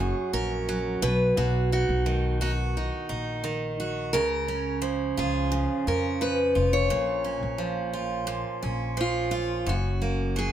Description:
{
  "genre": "acoustic pop",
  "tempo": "87 BPM",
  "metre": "4/4",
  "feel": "straight",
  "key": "unclear",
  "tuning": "A4 = 439 Hz",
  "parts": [
    { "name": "picked steel-string acoustic guitar", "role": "melody", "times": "0.0-10.5 s", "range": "D#4 to Db5", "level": "-28 LUFS", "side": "equal", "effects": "none" },
    { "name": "picked steel-string acoustic guitar", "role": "accompaniment", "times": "0.0-10.5 s", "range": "Gb2 to Gb4", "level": "-29 LUFS", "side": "right 3 dB", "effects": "none" },
    { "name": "upright bass", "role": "bass", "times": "0.0-10.5 s", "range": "F1 to F2", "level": "-29 LUFS", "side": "left 1 dB", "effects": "none" }
  ],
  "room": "light reverb",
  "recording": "none",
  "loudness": "-24 LUFS",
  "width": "side -10 dB against mid",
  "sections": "0.0-9.7 A section",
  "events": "none",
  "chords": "0.0 Gb; 1.0 B; 4.1 Db; 6.9 Bbm; 9.7 Gb"
}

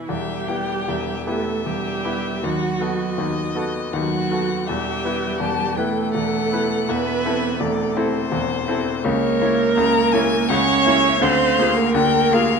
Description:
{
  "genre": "classical, slow romantic movement for piano quartet",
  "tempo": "81 BPM",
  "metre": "3/4",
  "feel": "rubato",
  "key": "E minor",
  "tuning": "A4 = 439 Hz",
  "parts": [
    { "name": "rich cello", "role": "second line", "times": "0.0-12.6 s", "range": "E3 to C#4", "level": "-25 LUFS", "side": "right 9 dB", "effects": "none" },
    { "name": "bright grand piano", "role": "accompaniment", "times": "0.0-12.6 s", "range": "E1 to C#5", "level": "-23 LUFS", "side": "left 3 dB", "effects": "none" },
    { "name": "rich viola", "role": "accompaniment", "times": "0.0-12.6 s", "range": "E4 to C#5", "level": "-23 LUFS", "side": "right 3 dB", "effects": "none" },
    { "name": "rich violin", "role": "melody", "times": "0.1-12.6 s", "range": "C5 to A#5", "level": "-26 LUFS", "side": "left 10 dB", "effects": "none" }
  ],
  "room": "moderate recital hall reverb, RT60 1.4 s",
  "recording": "close, detailed microphones",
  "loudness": "-18 LUFS",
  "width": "side -5 dB against mid",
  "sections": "0.1-12.6 A section",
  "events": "none",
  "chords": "0.1 Em; 2.4 B7/D#; 4.7 Em; 6.9 Am/E; 9.1 A#dim/C#; 11.2 A#7/D"
}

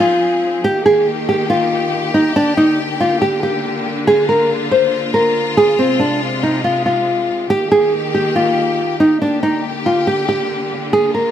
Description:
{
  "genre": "hip hop",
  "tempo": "140 BPM",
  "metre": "4/4",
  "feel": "half-time",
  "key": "unclear",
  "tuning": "A4 = 439 Hz",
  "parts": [
    { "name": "nylon-string guitar", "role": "melody", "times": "0.0-11.3 s", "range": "C4 to C5", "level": "-14 LUFS", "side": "equal", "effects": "ping-pong delay" },
    { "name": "clear studio string section", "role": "sustained chords", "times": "0.0-11.3 s", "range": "C3 to Ab4", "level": "-21 LUFS", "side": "left 2 dB", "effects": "none" }
  ],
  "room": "light reverb, small room ambience",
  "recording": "none",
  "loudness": "-13 LUFS",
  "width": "side -10 dB against mid",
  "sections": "0.0-9.2 A section; 9.2-11.3 B section",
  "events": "none",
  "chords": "0.0 Fm; 0.6 Eb; 2.4 Gm; 4.1 Bb; 5.8 Fm; 7.5 Eb; 9.2 Gm"
}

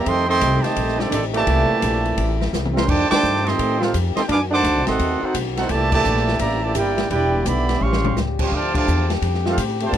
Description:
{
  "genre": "jazz, big band swing",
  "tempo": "170 BPM",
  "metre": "4/4",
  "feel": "swing 64% on 8ths",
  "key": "C major",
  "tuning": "A4 = 442 Hz",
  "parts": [
    { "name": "warm trumpet section", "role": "melody", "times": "0.0-10.0 s", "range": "C4 to D6", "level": "-21 LUFS", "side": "right 2 dB", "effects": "none" },
    { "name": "warm trombone section", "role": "second line", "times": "0.0-10.0 s", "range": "Bb2 to G4", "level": "-23 LUFS", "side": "right 3 dB", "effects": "none" },
    { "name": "warm trombone section", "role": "sustained chords", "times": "0.0-10.0 s", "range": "C3 to G4", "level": "-29 LUFS", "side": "left 5 dB", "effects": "stereo widening" },
    { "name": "upright bass", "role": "bass", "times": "0.0-10.0 s", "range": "E1 to A2", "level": "-23 LUFS", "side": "equal", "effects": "none" },
    { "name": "open jazz drum kit", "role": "drums", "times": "0.1-10.0 s", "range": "crash cymbal, hi-hat, kick drum, ride cymbal, snare drum, toms", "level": "-26 LUFS", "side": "left 2 dB", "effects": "none" }
  ],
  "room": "little or no reverb",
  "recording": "dry, close 1970s-style studio recording",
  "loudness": "-17 LUFS",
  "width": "side -10 dB against mid",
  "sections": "0.0-10.0 A section",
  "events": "drum fill 2.5-2.9, 7.8-8.2; band accent 3.1, 5.9, 8.7",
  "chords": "0.1 F13; 1.5 C13; 2.9 F13; 4.3 F#dim7; 5.7 C13; 7.1 Em7; 7.8 A7alt; 8.5 Dm7"
}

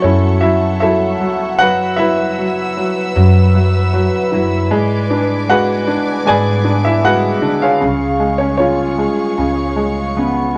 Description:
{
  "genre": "acoustic folk-pop ballad",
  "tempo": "77 BPM",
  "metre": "4/4",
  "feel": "straight",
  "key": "unclear",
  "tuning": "A4 = 440 Hz",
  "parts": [
    { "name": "clear grand piano", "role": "melody", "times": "0.0-10.6 s", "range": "C#3 to G#5", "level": "-17 LUFS", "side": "equal", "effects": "none" },
    { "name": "dark chamber string section", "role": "sustained chords", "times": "0.0-10.6 s", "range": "G#4 to E6", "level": "-25 LUFS", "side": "equal", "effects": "none" },
    { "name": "concert harp", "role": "arpeggios", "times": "0.0-10.6 s", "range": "B3 to G#4", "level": "-26 LUFS", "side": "equal", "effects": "none" },
    { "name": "upright bass", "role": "bass", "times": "0.0-10.6 s", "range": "C#2 to D3", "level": "-19 LUFS", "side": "equal", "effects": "none" }
  ],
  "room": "wet studio reverb, RT60 0.7 s",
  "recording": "none",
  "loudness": "-15 LUFS",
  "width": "mono",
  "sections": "0.0-10.6 A section",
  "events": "none",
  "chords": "0.0 F#m7; 1.6 Bsus4/F#; 4.7 G#dim; 7.8 C#"
}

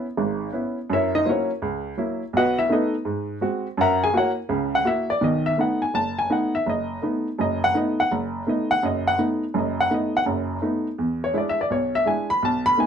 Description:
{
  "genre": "solo jazz",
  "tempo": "166 BPM",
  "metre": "4/4",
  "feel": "swing 65% on 8ths",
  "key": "B mixolydian",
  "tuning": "A4 = 440 Hz",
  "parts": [
    { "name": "clear upright piano", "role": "solo", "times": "0.0-12.9 s", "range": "F#1 to B5", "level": "-20 LUFS", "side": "equal", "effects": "none" }
  ],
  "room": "light reverb",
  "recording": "none",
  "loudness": "-21 LUFS",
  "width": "side -8 dB against mid",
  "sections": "0.0-5.2 A section; 5.2-12.9 A section",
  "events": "upright piano solo 0.0-12.9",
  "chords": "0.0 C#m7; 0.9 F#7; 2.3 B7; 3.0 G#7; 3.8 F#7; 5.2 B7; 11.0 E7"
}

